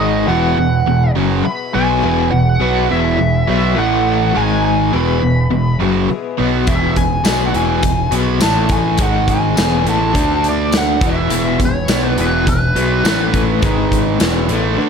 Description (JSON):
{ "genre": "classic rock", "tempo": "104 BPM", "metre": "4/4", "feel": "straight", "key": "E major", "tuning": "A4 = 443 Hz", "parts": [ { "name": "smooth overdriven lead guitar", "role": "melody", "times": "0.0-14.9 s", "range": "B4 to B5", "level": "-20 LUFS", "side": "equal", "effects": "wah, plate reverb" }, { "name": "fingerpicked twelve-string acoustic guitar", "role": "accompaniment", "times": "0.0-14.9 s", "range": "E2 to A4", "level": "-27 LUFS", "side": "left 8 dB", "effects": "plate reverb" }, { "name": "overdriven electric guitar", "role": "riff", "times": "0.0-14.9 s", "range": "E2 to D4", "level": "-20 LUFS", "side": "left 13 dB", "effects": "tremolo" }, { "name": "overdriven electric guitar", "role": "riff", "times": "0.0-14.9 s", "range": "E2 to D4", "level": "-19 LUFS", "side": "right 11 dB", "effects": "none" }, { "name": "growling picked electric bass", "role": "bass", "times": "0.0-14.8 s", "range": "E1 to D2", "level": "-19 LUFS", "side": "equal", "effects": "overdrive" }, { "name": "big rock drum kit", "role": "drums", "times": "6.7-14.6 s", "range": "hi-hat, kick drum, snare drum, tambourine", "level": "-18 LUFS", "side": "equal", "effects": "none" } ], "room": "light reverb", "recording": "none", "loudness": "-13 LUFS", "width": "side -6 dB against mid", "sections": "0.0-14.9 A section", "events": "none", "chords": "0.3 E; 3.8 A5; 4.4 G#5; 4.9 E; 8.4 A5; 9.0 G#5; 9.6 E; 10.2 D5; 11.0 E; 13.0 A5; 13.6 G#5; 14.2 E", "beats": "0.29 0.87 1.45 | 2.03 2.61 3.19 3.77 | 4.36 4.93 5.51 6.10 | 6.68 7.26 7.84 8.41 | 8.99 9.57 10.15 10.73 | 11.31 11.89 12.47 13.05 | 13.63 14.21 14.78" }